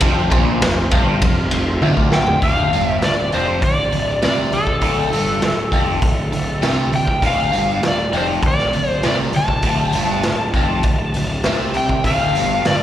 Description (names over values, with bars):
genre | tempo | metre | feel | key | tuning
blues rock power trio and southern rock | 100 BPM | 4/4 | straight | D minor | A4 = 440 Hz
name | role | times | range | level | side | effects
overdriven tonewheel organ | sustained chords | 0.0-2.4, 12.0-12.8 s | C4 to A5 | -28 LUFS | right 3 dB | slow rotary speaker, chorus vibrato
biting overdriven guitar | riff | 0.0-12.8 s | D2 to C3 | -21 LUFS | equal | phaser, slapback echo
fuzz picked electric bass | bass | 0.0-12.8 s | D1 to C2 | -22 LUFS | equal | overdrive
raw garage drum kit | drums | 0.0-12.8 s | hi-hat, kick drum, ride cymbal, snare drum, toms | -20 LUFS | equal | none
overdriven slide guitar | melody | 2.1-12.8 s | A4 to A5 | -20 LUFS | left 1 dB | slapback echo
room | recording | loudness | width
light reverb | live gig heard through the venue's PA, recital hall reverb | -15 LUFS | side -11 dB against mid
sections
0.0-2.4 A section; 2.4-12.8 B section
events
tonewheel organ fill 1.2-2.4; drum fill 1.8-2.4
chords
0.0 F5; 2.4 Dm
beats
| 0.01 0.61 1.22 1.81 | 2.42 3.02 3.62 4.22 | 4.82 5.43 6.03 6.63 | 7.23 7.84 8.44 9.04 | 9.64 10.24 10.84 11.45 | 12.05 12.65